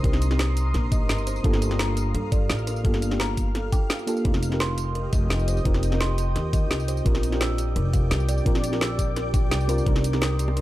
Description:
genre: liquid drum and bass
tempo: 171 BPM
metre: 4/4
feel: straight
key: C dorian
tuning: A4 = 440 Hz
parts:
  - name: mellow FM electric piano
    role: accompaniment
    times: 0.0-10.6 s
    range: Bb3 to Bb4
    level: -30 LUFS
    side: right 1 dB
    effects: chorus, dub echo
  - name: shimmering ambient pad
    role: sustained chords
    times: 0.0-10.6 s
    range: G4 to Eb6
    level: -34 LUFS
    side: equal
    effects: chorus, built-in reverb, vintage 12-bit sampler grit
  - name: buzzing kalimba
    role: arpeggios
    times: 0.0-10.6 s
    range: A4 to E6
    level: -33 LUFS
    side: equal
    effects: dub echo
  - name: upright bass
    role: bass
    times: 0.0-10.6 s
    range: F1 to G2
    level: -25 LUFS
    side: equal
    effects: none
  - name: drum and bass drum kit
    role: drums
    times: 0.0-10.6 s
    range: hi-hat, snare drum, tambourine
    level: -30 LUFS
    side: equal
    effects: overdrive
  - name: electronic kick drum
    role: drums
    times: 0.0-9.9 s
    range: none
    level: -23 LUFS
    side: equal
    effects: overdrive
  - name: bongos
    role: percussion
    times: 10.5 s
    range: none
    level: -34 LUFS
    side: right 2 dB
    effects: none
room: small room reverb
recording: dark, warm production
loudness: -21 LUFS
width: side -15 dB against mid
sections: 0.0-10.6 A section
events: none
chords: 0.0 Cm7; 1.4 Gm9; 4.3 F9sus4; 7.1 Bb6; 9.9 Cm7

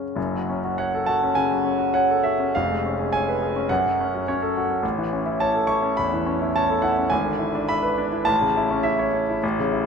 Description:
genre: classical, romantic character piece for solo piano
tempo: 104 BPM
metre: 4/4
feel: rubato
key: F# minor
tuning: A4 = 440 Hz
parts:
  - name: clear concert grand piano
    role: solo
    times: 0.0-9.9 s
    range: E#1 to C#6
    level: -20 LUFS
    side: equal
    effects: none
room: moderate concert hall reverb, RT60 2.1 s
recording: minimal, uncompressed stereo recording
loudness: -20 LUFS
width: side -6 dB against mid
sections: 0.2-9.9 A section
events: none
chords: 0.2 F#m; 2.5 C#7/E#; 3.7 F#m; 4.8 A; 7.1 E7/G#; 8.3 A

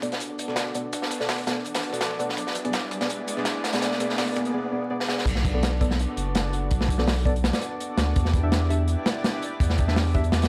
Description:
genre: drum and bass, jungle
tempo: 166 BPM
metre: 4/4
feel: straight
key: B minor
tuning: A4 = 440 Hz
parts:
  - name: deep mellow chord stab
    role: stabs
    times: 0.0-10.2 s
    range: B3 to E5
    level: -33 LUFS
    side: equal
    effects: chorus, cassette tape, dub echo
  - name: crunchy breakbeat drum kit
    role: drums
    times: 0.0-10.5 s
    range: crash cymbal, hi-hat, kick drum, snare drum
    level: -28 LUFS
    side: equal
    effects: high-pass filter on kick, high-pass filter on hats, high-pass filter on cymbals, high-pass filter on snare, high-pass filter on room
  - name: dusty soul sampler-style drum kit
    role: drums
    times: 0.0-4.5 s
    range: hi-hat, shaker, snare drum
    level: -39 LUFS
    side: equal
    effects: none
  - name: riser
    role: sound effects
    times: 1.8-4.5 s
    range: none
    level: -40 LUFS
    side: equal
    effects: none
  - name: lush unison pad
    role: sustained chords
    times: 0.1-10.5 s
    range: B3 to D5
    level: -34 LUFS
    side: equal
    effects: chorus
  - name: saturated sub bass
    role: bass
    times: 5.3-10.5 s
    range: F#1 to E2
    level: -26 LUFS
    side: equal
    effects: none
room: light reverb, small room ambience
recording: vinyl crackle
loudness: -25 LUFS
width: mono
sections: 0.0-5.3 A section; 5.3-10.5 B section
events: build-up 0.0-5.3; filter sweep on synth stab 0.0-5.3; riser 1.8-4.5; drum fill 5.0; drop 5.3-10.5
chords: 0.0 Bm7; 2.4 E7; 5.3 Bm7; 8.2 Em7

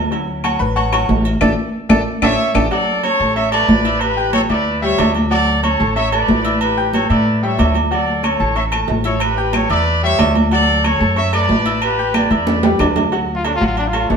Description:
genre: latin, salsa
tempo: 184 BPM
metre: 4/4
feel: straight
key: D major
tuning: A4 = 440 Hz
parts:
  - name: upright bass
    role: bass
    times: 0.0-14.2 s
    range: A1 to A2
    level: -19 LUFS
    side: left 1 dB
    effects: none
  - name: bright baby grand piano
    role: accompaniment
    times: 0.1-14.2 s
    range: F#3 to G6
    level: -21 LUFS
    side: left 2 dB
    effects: none
  - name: agogo bells and timbales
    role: percussion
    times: 0.1-14.2 s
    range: none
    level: -21 LUFS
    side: right 6 dB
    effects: none
  - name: congas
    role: percussion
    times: 0.1-14.2 s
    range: none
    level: -23 LUFS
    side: equal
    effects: none
  - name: claves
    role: percussion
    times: 0.4-2.6, 8.2-13.0 s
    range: none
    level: -28 LUFS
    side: left 8 dB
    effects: none
  - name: clear trumpet section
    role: melody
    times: 2.2-12.9 s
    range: G4 to E5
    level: -18 LUFS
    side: equal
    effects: none
  - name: warm trumpet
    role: melody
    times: 13.3-14.2 s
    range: D4 to F4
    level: -20 LUFS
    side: left 2 dB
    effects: none
room: wet stone room reverb, RT60 1.2 s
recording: band playing live in one room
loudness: -13 LUFS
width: side -6 dB against mid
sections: 0.0-2.7 A section; 2.7-13.1 B section; 13.1-14.2 A section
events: grand piano solo 0.0-2.7; band accent 1.4-2.7; drum fill 1.9-2.7, 12.5-13.1; trumpet solo 13.1-14.2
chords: 0.1 Dmaj7; 1.4 Asus4; 2.7 Dmaj7; 4.0 A9sus4; 5.3 Dmaj7; 6.6 A9sus4; 7.9 Dmaj7; 9.2 A9sus4; 10.5 Dmaj7; 11.8 A9sus4; 13.1 Dmaj7

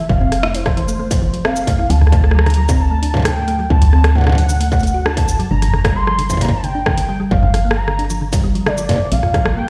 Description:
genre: IDM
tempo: 133 BPM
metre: 4/4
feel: straight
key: unclear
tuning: A4 = 439 Hz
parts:
  - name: warm velvety synth lead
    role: melody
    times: 0.0-9.7 s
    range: C5 to C6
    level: -24 LUFS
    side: equal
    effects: chorus, digital delay
  - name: thumb-piano-like synth pluck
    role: arpeggios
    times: 0.0-9.6 s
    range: D3 to A4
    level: -25 LUFS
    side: equal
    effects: chorus, digital delay
  - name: woody FM bass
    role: bass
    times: 0.0-9.7 s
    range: F1 to D2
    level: -19 LUFS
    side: equal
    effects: none
  - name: electronic kick drum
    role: drums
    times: 0.1-9.4 s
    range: none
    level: -20 LUFS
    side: equal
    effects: distortion
  - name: booming analog drum machine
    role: drums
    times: 0.2-9.5 s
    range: hi-hat, rim click, shaker, toms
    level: -23 LUFS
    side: equal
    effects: none
room: light reverb, digital ambience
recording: played on a big sound system in a bare room, stone room reverb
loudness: -15 LUFS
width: mono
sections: 0.0-9.7 A section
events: none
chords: 0.0 Fmaj7; 1.9 D; 5.5 Gm7; 9.1 Bb5

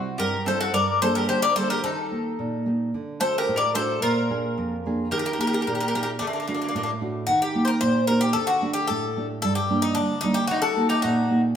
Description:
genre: greek folk, Greek bouzouki band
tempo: 111 BPM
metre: 2/4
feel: straight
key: unclear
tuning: A4 = 440 Hz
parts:
  - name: Greek bouzouki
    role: melody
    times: 0.0-11.4 s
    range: D4 to D5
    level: -24 LUFS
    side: left 3 dB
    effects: none
  - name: mandolin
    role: second line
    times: 0.0-6.9, 10.5-11.4 s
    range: A3 to Bb4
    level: -30 LUFS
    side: equal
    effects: none
  - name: nylon-string guitar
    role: accompaniment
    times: 0.0-11.6 s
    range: F2 to Ab4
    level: -25 LUFS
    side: right 2 dB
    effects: none
room: wet stone room reverb, RT60 1.3 s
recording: band playing live in one room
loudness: -21 LUFS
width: side -8 dB against mid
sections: 0.0-7.3 A section; 7.3-11.6 B section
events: speeding up 0.0-11.6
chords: 0.0 C; 0.7 Gm; 1.8 Eb; 2.9 D; 4.0 Bb7; 5.1 Eb; 6.2 D; 7.3 Eb; 8.4 Dsus4; 9.4 Gm; 10.5 Eb

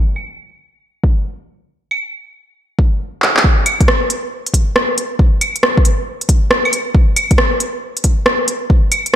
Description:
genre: future garage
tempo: 137 BPM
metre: 4/4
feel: swing 66% on 16ths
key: none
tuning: none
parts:
  - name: organic electronic drum kit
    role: drums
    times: 0.2-9.2 s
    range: claves, handclaps, hi-hat, rim click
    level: -15 LUFS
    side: equal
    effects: overdrive
  - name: electronic kick drum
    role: drums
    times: 1.0-8.8 s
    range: none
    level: -13 LUFS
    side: equal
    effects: overdrive
room: light reverb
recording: low-pass filter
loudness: -13 LUFS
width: side -11 dB against mid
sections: 0.0-3.4 A section; 3.4-9.2 B section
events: filter sweep 0.0-3.4; drum fill 3.2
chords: none

